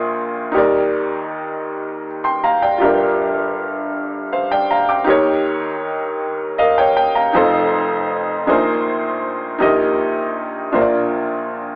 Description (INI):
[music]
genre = gospel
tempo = 53 BPM (dotted quarters)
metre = 6/8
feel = straight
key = Eb major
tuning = A4 = 441 Hz
[part]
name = bright upright piano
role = solo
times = 0.0-11.8 s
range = F1 to D6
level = -15 LUFS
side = equal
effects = none
[sound]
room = moderate large studio reverb, RT60 1.2 s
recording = band playing live in one room, AM radio sound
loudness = -15 LUFS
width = side -34 dB against mid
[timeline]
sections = 0.0-11.8 A section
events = upright piano fill 6.2-7.3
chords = 0.0 Bb7; 0.6 Ebmaj7; 2.8 Gm7; 5.1 Eb7; 7.3 F7; 8.5 Bb9sus4; 9.6 Eb/Bb; 10.7 Bb